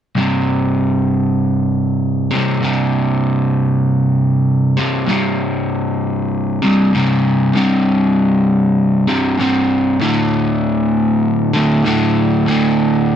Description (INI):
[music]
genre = rock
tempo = 97 BPM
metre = 4/4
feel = straight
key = unclear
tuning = A4 = 443 Hz
[part]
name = crunchy overdriven guitar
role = solo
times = 0.2-13.2 s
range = C2 to D3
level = -13 LUFS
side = equal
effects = none
[sound]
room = moderate studio reverb, RT60 0.7 s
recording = band playing live in one room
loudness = -13 LUFS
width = side -9 dB against mid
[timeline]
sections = 0.2-5.1 A section; 5.1-13.2 B section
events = none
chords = 0.2 C5; 10.0 D5